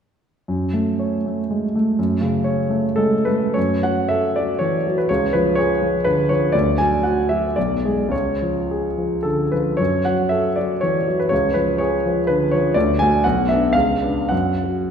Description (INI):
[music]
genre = classical, romantic character piece for solo piano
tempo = 93-132 BPM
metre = 3/4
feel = rubato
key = F# minor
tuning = A4 = 440 Hz
[part]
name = warm grand piano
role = solo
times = 0.5-14.9 s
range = B1 to G#5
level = -17 LUFS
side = equal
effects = none
[sound]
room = wet recital hall reverb, RT60 1.5 s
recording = heard from further back in the room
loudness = -17 LUFS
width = side -7 dB against mid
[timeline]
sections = 0.5-3.6 A section; 3.6-14.9 B section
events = none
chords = 0.5 F#m; 5.1 C#; 6.5 D; 7.6 G#dim/B; 8.1 C#; 9.8 F#m; 11.3 C#; 12.8 D; 13.2 Bmadd11; 13.7 C#7b9; 14.3 F#5